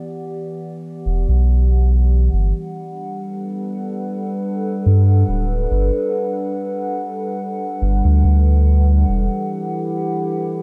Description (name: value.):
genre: ambient dub.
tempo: 71 BPM.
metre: 4/4.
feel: swing 54% on 16ths.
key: unclear.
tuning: A4 = 440 Hz.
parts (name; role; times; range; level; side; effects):
warbly tape-like pad; sustained chords; 0.0-10.6 s; E3 to F#5; -25 LUFS; equal; chorus, built-in reverb.
soft dub sub bass; bass; 1.1-9.3 s; D1 to G2; -16 LUFS; equal; none.
room: light reverb.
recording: none.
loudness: -18 LUFS.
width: mono.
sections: 0.0-10.6 A section.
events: fade-in on ambient pad 0.0-10.6.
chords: 0.0 Em7; 2.3 Gmaj7; 9.1 Em7.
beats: 0.64 1.48 | 2.33 3.17 4.02 4.86 | 5.71 6.55 7.40 8.24 | 9.09 9.93.